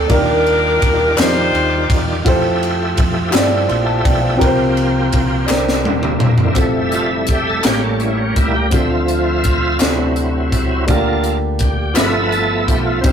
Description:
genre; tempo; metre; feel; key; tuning
slow gospel; 56 BPM (dotted quarters); 6/8; straight; F major; A4 = 440 Hz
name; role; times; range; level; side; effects
bright saxophone section; melody; 0.0-2.2 s; D4 to C5; -16 LUFS; left 1 dB; none
dark upright piano; accompaniment; 0.0-13.1 s; G2 to C6; -19 LUFS; equal; none
bright tonewheel organ; sustained chords; 0.0-13.1 s; D3 to E5; -20 LUFS; right 1 dB; fast rotary speaker, overdrive, chorus vibrato
fingered electric bass; bass; 0.0-13.1 s; Eb1 to G2; -22 LUFS; equal; none
crisp fusion drum kit; drums; 0.1-13.1 s; hi-hat, kick drum, ride cymbal, snare drum, toms; -18 LUFS; equal; none
group handclap; percussion; 1.2-12.3 s; none; -23 LUFS; left 3 dB; none
room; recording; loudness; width
moderate small room reverb, RT60 0.6 s; rough rehearsal-room recording, warm saturation; -13 LUFS; side -8 dB against mid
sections
0.0-6.6 A section; 6.6-13.1 B section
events
drum fill 5.5-6.6; tonewheel organ solo 6.6-13.1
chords
0.1 Ebmaj9; 2.3 Fmaj9; 4.4 C7sus4; 5.5 C9; 6.6 Fmaj7; 7.7 A7b9; 8.7 Dm7; 9.8 D7; 10.9 Gm7/D; 12.0 G13

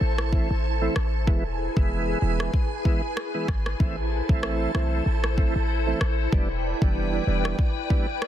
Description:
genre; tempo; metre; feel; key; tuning
dancehall; 95 BPM; 4/4; swing 56% on 16ths; A minor; A4 = 441 Hz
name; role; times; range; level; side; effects
glassy FM pad; sustained chords; 0.0-8.3 s; E4 to A5; -30 LUFS; left 1 dB; ensemble chorus, built-in reverb, sidechain pumping
warm 808-style bass; bass; 0.0-7.5 s; E1 to B1; -26 LUFS; equal; none
afro-pop drum kit; drums; 0.2-8.3 s; kick drum, rim click; -24 LUFS; equal; soft clipping on snare
tonewheel organ; accompaniment; 0.3-8.1 s; E3 to E4; -30 LUFS; right 4 dB; chorus vibrato, slow rotary speaker
room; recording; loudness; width
little or no reverb; dense, heavily limited modern master; -22 LUFS; side -11 dB against mid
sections
0.0-8.3 A section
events
none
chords
0.0 Am; 1.3 E; 3.8 Am; 6.3 Em7

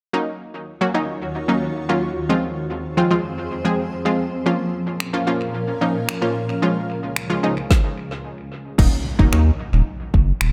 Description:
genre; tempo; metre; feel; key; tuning
dance-pop; 111 BPM; 4/4; straight; unclear; A4 = 440 Hz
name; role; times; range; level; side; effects
unison pluck; accompaniment; 0.1-10.1 s; F3 to Ab4; -24 LUFS; equal; sidechain pumping, analog delay
granular cloud pad; sustained chords; 1.0-7.7 s; Db2 to F5; -29 LUFS; equal; built-in reverb, sidechain pumping
deep house drum kit; drums; 5.0-10.5 s; crash cymbal, finger snaps, kick drum, snare drum; -21 LUFS; equal; analog delay
saturated sub bass; bass; 8.8-10.5 s; Eb1 to Eb2; -18 LUFS; equal; sidechain pumping
impact; sound effects; 9.0-10.5 s; none; -31 LUFS; equal; none
room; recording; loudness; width
light reverb, digital ambience; echo-heavy mix; -21 LUFS; mono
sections
0.1-8.8 A section; 8.8-10.5 B section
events
impact 8.8-10.5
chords
0.1 Ebm7; 2.3 Fm; 4.5 Bbm; 6.6 Db; 8.8 Ebm7

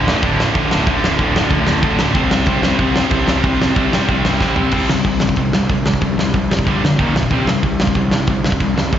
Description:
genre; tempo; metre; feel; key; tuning
punk rock; 186 BPM; 4/4; straight; unclear; A4 = 442 Hz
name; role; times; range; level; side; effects
distorted electric guitar; riff; 0.0-9.0 s; D2 to C4; -19 LUFS; left 6 dB; distortion, slapback echo
distorted electric guitar; riff; 0.0-9.0 s; D2 to C4; -21 LUFS; right 11 dB; overdrive, slapback echo
fuzz picked electric bass; bass; 0.0-9.0 s; D1 to D2; -21 LUFS; equal; overdrive
big rock drum kit; drums; 0.1-9.0 s; crash cymbal, hi-hat, kick drum, snare drum, toms; -18 LUFS; equal; none
room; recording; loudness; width
little or no reverb; live gig heard through the venue's PA, recital hall reverb, nothing above 7.7 kHz; -13 LUFS; side -10 dB against mid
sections
0.0-4.7 A section; 4.7-9.0 B section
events
drum fill 4.4-4.7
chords
0.0 D5; 2.2 C5; 6.7 G5; 7.0 Eb5; 7.3 C5

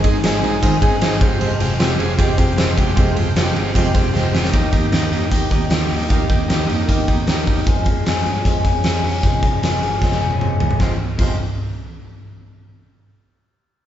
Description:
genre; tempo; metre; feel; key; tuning
jangly indie pop; 153 BPM; 4/4; straight; F minor; A4 = 440 Hz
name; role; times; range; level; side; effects
fingerpicked steel-string acoustic guitar; accompaniment; 0.0-11.3 s; F2 to Ab4; -24 LUFS; right 3 dB; none
overdriven combo organ; accompaniment; 0.0-7.6 s; Ab3 to Ab4; -24 LUFS; right 2 dB; none
electric guitar through a small old amp; arpeggios; 0.0-11.3 s; F2 to Ab4; -25 LUFS; left 4 dB; none
vintage muted picked electric bass; bass; 0.0-11.4 s; F1 to G2; -23 LUFS; equal; none
big rock drum kit; drums; 0.0-11.3 s; crash cymbal, hi-hat, kick drum, ride cymbal, snare drum, toms; -18 LUFS; equal; none
room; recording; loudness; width
moderate large studio reverb, RT60 1.1 s; band playing live in one room, nothing above 7.8 kHz; -15 LUFS; side -11 dB against mid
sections
0.0-4.5 A section; 4.5-10.8 B section; 10.8-12.4 C section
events
drum fill 4.1-4.5, 10.0-10.8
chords
0.0 Ab; 1.2 Fmadd9; 4.5 Eb; 7.7 Db/F; 10.8 Fm

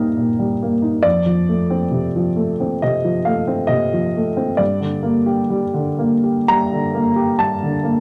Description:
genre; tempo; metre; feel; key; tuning
neoclassical minimalist piano; 67 BPM; 4/4; rubato; G minor; A4 = 440 Hz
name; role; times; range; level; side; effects
warm baby grand piano; solo; 0.0-8.0 s; F2 to Eb6; -18 LUFS; equal; none
room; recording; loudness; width
studio reverb; dry, close 1970s-style studio recording; -18 LUFS; mono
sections
0.0-8.0 A section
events
none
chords
0.0 Eb; 1.0 F; 4.6 Gm

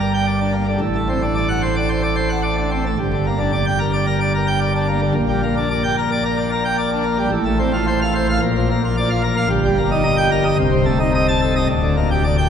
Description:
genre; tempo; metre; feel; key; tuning
classical, organ toccata; 110 BPM; 4/4; straight; G minor; A4 = 440 Hz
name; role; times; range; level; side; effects
pipe organ, plenum; solo; 0.0-12.5 s; C1 to A5; -16 LUFS; equal; none
room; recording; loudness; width
wet cathedral reverb, RT60 4.6 s; recorded in a church or concert hall; -16 LUFS; side -8 dB against mid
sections
0.0-12.5 A section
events
none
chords
0.0 Gm; 0.8 D7/A; 3.0 Gm; 5.1 Gm/Bb; 7.3 F/A; 8.4 Bb; 9.5 Eb/G; 10.6 Adim/C; 11.7 Gm/D

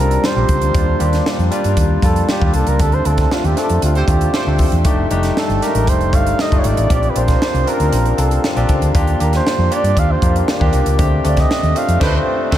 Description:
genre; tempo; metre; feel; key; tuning
polished 1980s jazz-funk pop; 117 BPM; 4/4; straight; Bb major; A4 = 440 Hz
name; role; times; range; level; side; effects
warm flugelhorn; melody; 0.0-12.4 s; F4 to F5; -21 LUFS; right 2 dB; none
barky tine electric piano; accompaniment; 0.0-12.6 s; G3 to Bb4; -19 LUFS; left 2 dB; lush chorus
hollow-body short-scale fingered electric bass; bass; 0.0-12.6 s; F1 to G2; -17 LUFS; equal; none
crisp fusion drum kit; drums; 0.1-12.6 s; crash cymbal, hi-hat, kick drum, snare drum; -18 LUFS; equal; none
clear horn section; second line; 4.0-4.7, 12.0-12.6 s; G4 to C5; -31 LUFS; right 3 dB; none
room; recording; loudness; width
moderate cathedral reverb, RT60 6.7 s; dreamy mix soaked in reverb; -13 LUFS; side -12 dB against mid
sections
0.0-12.6 A section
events
flugelhorn solo 0.0-12.6; band accent 2.8-4.9, 11.0-12.6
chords
0.0 Bb69; 0.7 Ebmaj9; 2.8 D7sus4; 4.9 F13; 6.9 Bb69; 8.9 Ebmaj9; 11.0 D7sus4

